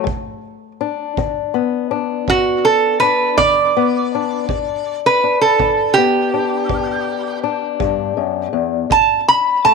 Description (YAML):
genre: acoustic country blues, solo or duo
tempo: 54 BPM (dotted quarters)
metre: 12/8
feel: straight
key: unclear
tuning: A4 = 440 Hz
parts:
  - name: fingerpicked swing-style acoustic guitar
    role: accompaniment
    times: 0.0-9.7 s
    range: D2 to D4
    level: -20 LUFS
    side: left 12 dB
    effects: none
  - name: kick drum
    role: drums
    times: 0.1-9.1 s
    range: none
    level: -26 LUFS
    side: right 4 dB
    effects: none
  - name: lap resonator guitar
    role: melody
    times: 2.3-9.7 s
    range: F#4 to B5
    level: -14 LUFS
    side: right 3 dB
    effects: tape echo
room: light reverb, small room ambience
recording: 1960s-style stereo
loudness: -14 LUFS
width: side -4 dB against mid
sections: 0.0-9.7 A section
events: none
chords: 0.1 G; 8.9 D5